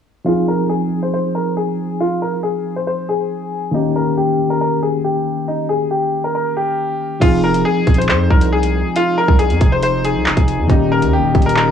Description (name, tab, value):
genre	hip hop, drill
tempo	138 BPM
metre	4/4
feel	half-time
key	F minor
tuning	A4 = 440 Hz
part	bell-like tine electric piano	accompaniment	0.2-11.7 s	Eb3 to Ab4	-19 LUFS	left 2 dB	fast stereo tremolo, cassette tape
part	bright concert grand piano	melody	0.3-11.7 s	Eb4 to C5	-18 LUFS	left 1 dB	cassette tape, analog delay
part	dark French horn section	sustained chords	7.2-11.7 s	C3 to Eb4	-25 LUFS	equal	cassette tape
part	distorted 808-style bass	bass	7.2-11.7 s	Eb1 to F2	-19 LUFS	right 1 dB	distortion
part	drill drum kit	drums	7.2-11.7 s	crash cymbal, handclaps, hi-hat, kick drum	-14 LUFS	equal	cassette tape
room	light reverb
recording	home recording on cassette, low-pass filter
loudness	-14 LUFS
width	side -8 dB against mid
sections	0.3-7.2 A section; 7.2-11.7 B section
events	filter sweep 0.3-7.2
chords	0.3 Fm7; 3.7 Eb7; 7.2 Fm7; 10.7 Eb7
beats	| 0.26 0.70 1.13 1.56 | 2.00 2.44 2.87 3.30 | 3.74 4.17 4.61 5.04 | 5.48 5.91 6.35 6.78 | 7.22 7.65 8.09 8.52 | 8.96 9.39 9.83 10.26 | 10.70 11.13 11.56